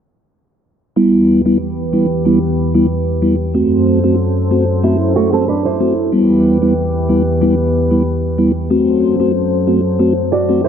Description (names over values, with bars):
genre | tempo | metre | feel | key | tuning
dancehall | 93 BPM | 4/4 | straight | E minor | A4 = 440 Hz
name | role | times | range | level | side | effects
tonewheel organ | accompaniment | 1.0-10.6 s | G3 to F#4 | -14 LUFS | equal | overdrive, slow rotary speaker
warm analog pad | sustained chords | 1.0-10.7 s | E2 to C5 | -16 LUFS | left 1 dB | chorus
nylon-string guitar | arpeggios | 4.8-6.1, 10.3-10.7 s | A3 to D5 | -17 LUFS | right 6 dB | none
room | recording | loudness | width
moderate plate reverb, RT60 3.4 s | dark, warm production, low-pass filter | -12 LUFS | side -8 dB against mid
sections
1.0-10.7 A section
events
none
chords
1.0 Em; 3.5 F#dim; 6.1 Em; 8.7 F#dim